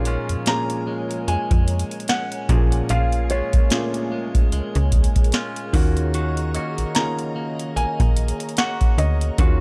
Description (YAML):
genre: contemporary R&B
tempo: 74 BPM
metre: 4/4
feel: swing 58% on 16ths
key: Eb minor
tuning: A4 = 439 Hz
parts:
  - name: warm grand piano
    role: accompaniment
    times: 0.0-9.6 s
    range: Bb2 to Ab4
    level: -31 LUFS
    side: equal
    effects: none
  - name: glassy FM pad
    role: sustained chords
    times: 0.1-9.6 s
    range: F3 to Bb5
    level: -36 LUFS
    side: equal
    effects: ensemble chorus, built-in reverb
  - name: clean electric guitar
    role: arpeggios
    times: 0.0-9.6 s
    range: Bb2 to Gb4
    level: -32 LUFS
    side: equal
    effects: none
  - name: slap-like FM bass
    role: bass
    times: 0.0-9.6 s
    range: Bb1 to F2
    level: -23 LUFS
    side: equal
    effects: none
  - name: booming analog drum machine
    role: drums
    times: 0.1-9.6 s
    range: hi-hat, kick drum, snare drum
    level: -22 LUFS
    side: equal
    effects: none
  - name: dark baby grand piano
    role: melody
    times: 0.5-9.6 s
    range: Db5 to Bb5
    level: -30 LUFS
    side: equal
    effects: delay
  - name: soft round pluck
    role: texture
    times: 6.5-9.6 s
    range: Db5 to Eb5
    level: -42 LUFS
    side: equal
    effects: none
room: little or no reverb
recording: none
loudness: -21 LUFS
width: mono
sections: 0.0-9.6 A section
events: none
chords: 0.0 Bbm7; 5.7 Ebm7